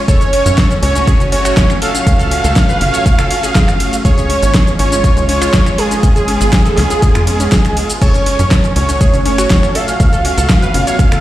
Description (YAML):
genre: progressive house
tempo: 121 BPM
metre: 4/4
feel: straight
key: F# harmonic minor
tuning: A4 = 440 Hz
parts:
  - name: lush unison pad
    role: sustained chords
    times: 0.0-11.2 s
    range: G#3 to F#4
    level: -21 LUFS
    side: right 1 dB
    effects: chorus, phaser, sidechain pumping
  - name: wide unison lead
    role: melody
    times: 0.1-11.2 s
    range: G#4 to E#5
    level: -17 LUFS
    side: right 1 dB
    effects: sidechain pumping, tape echo
  - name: glassy wavetable pluck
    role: arpeggios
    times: 0.1-11.2 s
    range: C#4 to C#5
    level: -22 LUFS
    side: left 1 dB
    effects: chorus, sidechain pumping, tape echo
  - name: tight sequencer bass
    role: bass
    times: 0.1-11.2 s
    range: F#1 to F#2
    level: -17 LUFS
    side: equal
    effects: sidechain pumping
  - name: deep house drum kit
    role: drums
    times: 0.1-11.2 s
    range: crash cymbal, finger snaps, hi-hat, ride cymbal, shaker, snare drum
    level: -18 LUFS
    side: equal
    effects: studio reverb
  - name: electronic kick drum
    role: drums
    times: 0.1-11.1 s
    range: none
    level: -12 LUFS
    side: equal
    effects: studio reverb
room: light reverb, digital ambience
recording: played on a big sound system in a bare room, stone room reverb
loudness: -10 LUFS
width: side -14 dB against mid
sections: 0.0-11.2 A section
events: none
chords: 0.1 F#m; 4.0 C#; 8.0 F#m